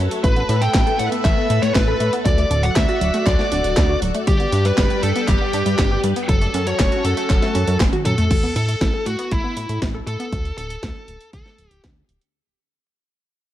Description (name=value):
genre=italo disco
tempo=119 BPM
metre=4/4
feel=straight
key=A mixolydian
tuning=A4 = 440 Hz
part: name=string machine, full ensemble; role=sustained chords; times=0.0-8.3 s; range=G3 to E5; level=-25 LUFS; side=equal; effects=ensemble chorus
part: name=analog pluck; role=arpeggios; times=0.0-10.3 s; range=F#3 to A4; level=-26 LUFS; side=equal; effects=chorus, ping-pong delay
part: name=chorused synth bass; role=bass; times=0.0-12.2 s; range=D1 to A2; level=-22 LUFS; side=equal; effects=tube saturation
part: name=house drum kit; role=drums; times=0.1-12.3 s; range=crash cymbal, handclaps, hi-hat, snare drum, toms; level=-25 LUFS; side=equal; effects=none
part: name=bluesy overdriven lead guitar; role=melody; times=0.2-11.8 s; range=E4 to G5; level=-23 LUFS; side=equal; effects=distortion, ping-pong delay
part: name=electronic kick drum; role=drums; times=0.2-11.9 s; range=none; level=-20 LUFS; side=equal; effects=none
room=light reverb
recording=vinyl crackle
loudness=-16 LUFS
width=side -13 dB against mid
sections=0.0-8.3 A section; 8.3-12.3 B section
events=drum fill 7.9-8.3; fade-out 8.3-12.3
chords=0.2 Asus2; 2.3 D; 4.3 G; 6.3 F#m; 8.3 Asus2; 10.3 D5